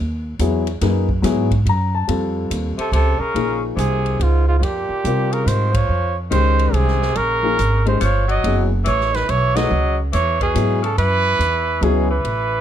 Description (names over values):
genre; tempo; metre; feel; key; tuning
modal jazz; 142 BPM; 3/4; swing 65% on 8ths; unclear; A4 = 440 Hz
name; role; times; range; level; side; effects
upright bass; bass; 0.0-12.6 s; Gb1 to C3; -19 LUFS; right 1 dB; none
dark grand piano; accompaniment; 0.4-12.1 s; Eb3 to A#5; -22 LUFS; left 5 dB; none
swinging big-band drum kit; drums; 0.4-12.4 s; hi-hat, kick drum, ride cymbal, snare drum; -30 LUFS; equal; none
breathy trumpet; melody; 2.8-12.6 s; F4 to Eb5; -21 LUFS; right 5 dB; none
clear tenor saxophone; second line; 2.8-12.6 s; Ab2 to Gb3; -25 LUFS; left 7 dB; none
room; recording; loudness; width
light reverb; none; -16 LUFS; side -10 dB against mid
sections
0.0-3.3 A section; 3.3-12.6 B section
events
band accent 5.7, 9.5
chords
0.0 F#9sus4; 2.1 F7b13; 3.3 Bbm11; 8.4 Gbm11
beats
0.39 | 0.81 1.24 1.66 | 2.08 2.50 2.92 | 3.35 3.77 4.20 | 4.62 5.04 5.47 | 5.89 6.32 6.74 | 7.16 7.59 8.01 | 8.43 8.86 9.28 | 9.71 10.13 10.55 | 10.98 11.40 11.82 | 12.25